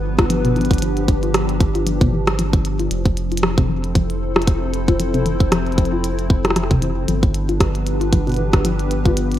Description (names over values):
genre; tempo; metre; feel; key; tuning
IDM; 115 BPM; 4/4; swing 56% on 16ths; unclear; A4 = 440 Hz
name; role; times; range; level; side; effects
hollow soft pad; sustained chords; 0.0-9.4 s; F3 to C5; -23 LUFS; left 1 dB; ensemble chorus
round analog bass; bass; 0.0-9.4 s; F1 to G1; -22 LUFS; equal; tube saturation
warbly dusty pluck; arpeggios; 0.2-9.1 s; B2 to F4; -24 LUFS; left 2 dB; chorus, ping-pong delay
electronic kick drum; drums; 0.2-9.1 s; none; -16 LUFS; equal; studio reverb
glitchy drum kit; drums; 0.2-9.4 s; hi-hat, rim click; -24 LUFS; right 1 dB; studio reverb
room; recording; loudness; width
light reverb; rough home demo mix; -16 LUFS; side -12 dB against mid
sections
0.0-9.4 A section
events
filter sweep on synth arpeggio sound 0.0-9.4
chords
0.0 G7; 2.9 Fmaj7; 7.1 G7